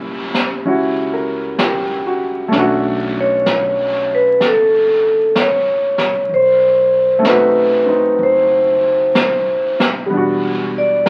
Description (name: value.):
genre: jazz ballad.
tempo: 64 BPM.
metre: 4/4.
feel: swing 67% on 8ths.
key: unclear.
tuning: A4 = 441 Hz.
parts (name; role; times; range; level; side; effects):
clear concert grand piano; accompaniment; 0.0-11.1 s; G3 to A#4; -22 LUFS; equal; none.
upright bass; bass; 0.0-11.1 s; E1 to C#2; -35 LUFS; equal; none.
jazz brush drum kit; drums; 0.3-11.1 s; brushed snare drum, hi-hat, snare drum; -24 LUFS; equal; none.
vibraphone with medium mallets; melody; 3.2-11.1 s; A4 to D5; -15 LUFS; equal; none.
room: light reverb.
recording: very old 78 rpm record, vinyl crackle.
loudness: -15 LUFS.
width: mono.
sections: 0.0-11.1 A section.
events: none.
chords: 0.0 F#7b9; 2.5 Bm7; 6.3 B7b9; 10.1 Em9.